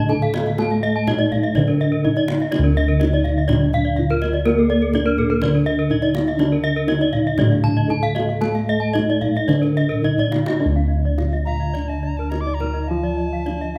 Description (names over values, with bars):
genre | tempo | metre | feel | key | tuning
Balinese gamelan | 105-124 BPM | 4/4 | straight | D pelog | A4 = 435 Hz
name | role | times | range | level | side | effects
gamelan-type bronze metallophone | melody | 0.0-13.8 s | Bb3 to A4 | -26 LUFS | equal | none
gamelan-type bronze metallophone | accompaniment | 0.0-13.8 s | D3 to Bb3 | -28 LUFS | equal | none
gamelan-type bronze metallophone | arpeggios | 0.0-13.6 s | A4 to A5 | -30 LUFS | equal | none
gamelan-type bossed gongs | bass | 0.0-13.8 s | D2 to Bb4 | -24 LUFS | equal | none
kendang | percussion | 0.1-13.8 s | none | -29 LUFS | equal | none
gamelan-type bronze metallophone | arpeggios | 0.2-13.8 s | Bb4 to A5 | -29 LUFS | equal | none
bright reedy alto recorder | second line | 11.5-13.8 s | A5 to D6 | -33 LUFS | equal | none
room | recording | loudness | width
light reverb | close, detailed microphones | -19 LUFS | mono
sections
0.0-10.6 A section; 10.6-13.8 B section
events
drum fill 9.9-10.6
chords
none